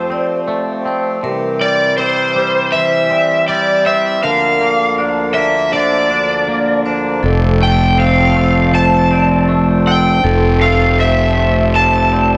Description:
post-rock; 80 BPM; 4/4; straight; F major; A4 = 437 Hz
lead guitar through a small cranked amp; melody; 0.0-12.4 s; C5 to A5; -17 LUFS; equal; overdrive, slapback echo, analog delay
hand-pumped harmonium; sustained chords; 0.0-12.4 s; D2 to D5; -25 LUFS; equal
twangy electric guitar; arpeggios; 0.0-12.4 s; F2 to D4; -23 LUFS; equal; phaser, slapback echo, analog delay
vibraphone with hard mallets; arpeggios; 0.0-12.4 s; A4 to D5; -24 LUFS; equal; slapback echo, analog delay
fuzz fingered electric bass; bass; 7.2-12.4 s; F1; -15 LUFS; equal; overdrive
wet lush hall reverb, RT60 1.9 s, small room ambience; big arena sound; -14 LUFS; mono
0.0-12.4 A section
0.0 F; 1.2 C; 4.2 Bb/D; 7.2 F

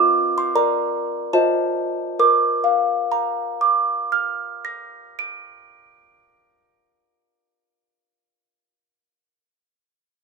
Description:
classical, lullaby for music box; 68 BPM; 3/4; rubato; Bb major; A4 = 443 Hz
music box; solo; 0.0-8.7 s; F4 to D7; -18 LUFS; right 1 dB
moderate plate reverb, RT60 2.8 s; minimal, uncompressed stereo recording; -18 LUFS; side -4 dB against mid
0.0-2.2 A section; 2.2-7.5 B section
slowing down 0.0-2.2
0.0 Bb/F; 1.3 F7; 2.2 Bb

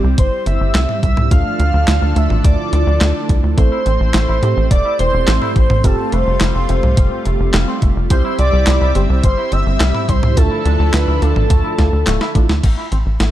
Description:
synthwave; 106 BPM; 4/4; straight; A4 = 440 Hz
lush unison pad; sustained chords; 0.0-12.6 s; D3 to E5; -26 LUFS; equal; chorus, sidechain pumping
FM electric piano with soft pad layer; stabs; 0.0-12.4 s; G3 to A4; -24 LUFS; right 4 dB; chorus, phaser, cassette tape
tight sequencer bass; bass; 0.0-13.3 s; D1 to A2; -15 LUFS; equal
warm velvety synth lead; melody; 0.2-12.4 s; A4 to F5; -21 LUFS; equal; chorus, cassette tape, digital delay
airy dreamy lead; second line; 0.2-12.3 s; A5 to F6; -28 LUFS; equal; chorus, ping-pong delay
clean 12-bit digital drum machine; drums; 0.2-13.3 s; crash cymbal, handclaps, hi-hat, snare drum, toms; -20 LUFS; equal; overdrive, studio reverb
electronic kick drum; drums; 0.2-12.7 s; -14 LUFS; equal; overdrive, studio reverb
electric guitar with an envelope filter; arpeggios; 3.6-13.3 s; G3 to E4; -27 LUFS; left 1 dB; ping-pong delay
little or no reverb; dark, warm production; -12 LUFS; side -13 dB against mid
0.0-12.6 A section
drum fill 11.8-12.6
0.0 C; 1.3 Dmadd9; 3.6 Am; 5.8 Fadd9; 8.1 C; 10.4 Dmadd9; 12.6 N.C.

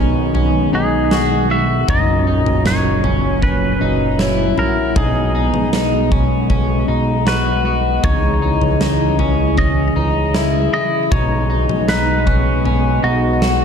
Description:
dream pop; 78 BPM; 4/4; straight; B major; A4 = 440 Hz
warm analog pad; sustained chords; 0.0-13.6 s; A#2 to D#5; -21 LUFS; right 2 dB; lush chorus
electric guitar at the edge of break-up; arpeggios; 0.0-13.6 s; C#4 to F#4; -20 LUFS; left 3 dB; wide subtle chorus, ping-pong delay
fat analog bass; bass; 0.0-13.6 s; F#1 to C#2; -19 LUFS; right 1 dB
celesta; texture; 0.0-11.5 s; E4 to F#5; -29 LUFS; right 1 dB; ping-pong delay
huge arena drum kit; drums; 0.3-13.6 s; kick drum, snare drum, toms; -20 LUFS; equal
pedal steel guitar; melody; 0.7-13.6 s; F#4 to E5; -23 LUFS; equal; ping-pong delay
light reverb, small room ambience; dark, warm production; -14 LUFS; side -7 dB against mid
0.0-13.6 A section
0.0 B6; 1.9 F#; 5.0 B6; 8.0 C#madd9; 11.1 B6

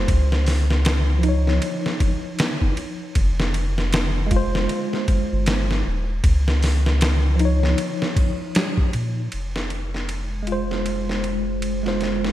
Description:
trip hop; 78 BPM; 4/4; swing 59% on 16ths; F minor; A4 = 440 Hz
tine electric piano; accompaniment; 0.0-12.3 s; F3 to Db5; -26 LUFS; equal; fast stereo tremolo, harmonic tremolo, vintage 12-bit sampler grit, tape echo
soft dub sub bass; bass; 0.0-12.3 s; Eb1 to Bb2; -21 LUFS; equal
trip hop sampler-style drum kit; drums; 0.1-12.3 s; hi-hat, kick drum, ride cymbal, snare drum; -23 LUFS; equal; high-pass filter on cymbals, high-pass filter on snare, high-pass filter on kick, high-pass filter on hats, high-pass filter on room, gated reverb
deep dark ambient pad; sustained chords; 10.3-12.3 s; Ab3 to Ab4; -29 LUFS; equal; chorus, built-in reverb
light reverb; bright 1980s-style digital production; -19 LUFS; side -13 dB against mid
0.0-9.3 A section; 9.3-12.3 B section
0.1 Dbadd9; 3.2 Fm; 6.2 Dbadd9; 9.3 Fm

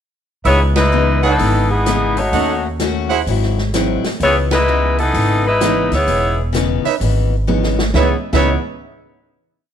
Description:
jazz, big band swing; 128 BPM; 4/4; swing 66% on 8ths; C# minor; A4 = 439 Hz
picked steel-string acoustic guitar; accompaniment; 0.4-8.5 s; G#2 to F#4; -22 LUFS; left 10 dB
clear trumpet section; stabs; 0.4-3.2, 6.8-8.5 s; D#4 to F#5; -21 LUFS; right 10 dB
upright bass; bass; 0.4-8.5 s; E1 to D#2; -18 LUFS; equal
open jazz drum kit; drums; 0.4-8.4 s; crash cymbal, hi-hat, kick drum, ride cymbal, snare drum, toms; -23 LUFS; equal
bright saxophone section; melody; 0.5-8.6 s; E3 to C#5; -16 LUFS; left 1 dB
warm baby grand piano; accompaniment; 3.7-8.5 s; E3 to D#4; -23 LUFS; right 12 dB
light reverb, studio ambience; 1960s-style stereo with parts hard left and right; -13 LUFS; side -9 dB against mid
0.5-7.9 A section; 7.9-9.7 final chord
band accent 0.7, 4.4; drum fill 7.5-7.9
0.5 C#m9; 2.3 D#m7b5; 3.3 G#7b13; 4.2 C#m9

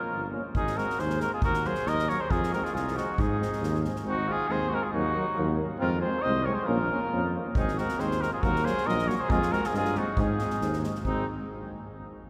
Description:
balkan folk, Balkan brass band; 137 BPM; 2/4; straight; Ab mixolydian; A4 = 440 Hz
clear flugelhorn; melody; 0.0-11.3 s; Eb4 to Eb5; -33 LUFS; equal
mellow trumpet; second line; 0.0-11.3 s; C4 to C5; -38 LUFS; equal
mellow tuba; bass; 0.1-11.3 s; G1 to Ab2; -33 LUFS; equal
clear euphonium; accompaniment; 0.3-11.3 s; Bb3 to Db4; -40 LUFS; equal
mellow trombone; accompaniment; 0.3-11.3 s; Gb3 to Bb3; -38 LUFS; equal
unplugged drum kit; percussion; 0.5-4.0, 7.6-11.3 s; kick drum, snare drum; -36 LUFS; equal
wet cathedral reverb, RT60 6.3 s; recorded in a church or concert hall; -28 LUFS; mono
0.0-4.1 A section; 4.1-11.0 A section
0.0 Bbm; 0.6 Ab; 1.4 Ebm; 2.3 Fm; 3.2 Ab; 4.9 Ebm; 5.8 Fm; 6.7 Bbm; 7.5 Ab; 8.4 Ebm; 9.3 Fm; 10.2 Ab

